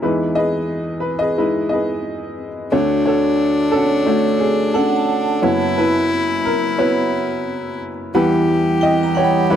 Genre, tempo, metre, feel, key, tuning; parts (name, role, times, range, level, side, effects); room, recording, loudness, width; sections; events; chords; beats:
acoustic folk-pop ballad; 89 BPM; 4/4; straight; A4 = 441 Hz
clear upright piano; melody; 0.0-9.6 s; F#1 to F#5; -17 LUFS; equal
clear violin; second line; 2.7-9.6 s; D4 to G4; -22 LUFS; left 4 dB
vibraphone with hard mallets; arpeggios; 3.7-9.6 s; C#5 to B5; -22 LUFS; right 7 dB
hollow soft pad; sustained chords; 8.5-9.6 s; E3 to E4; -22 LUFS; right 5 dB; chorus
small room ambience; dry, close 1970s-style studio recording; -15 LUFS; side -9 dB against mid
0.0-8.1 A section; 8.1-9.6 B section
0.0 Emaj7; 2.7 Dmaj7; 8.1 Emadd9
| 0.02 0.70 1.37 2.05 | 2.72 3.40 4.07 4.75 | 5.43 6.11 6.79 7.47 | 8.14 8.82 9.50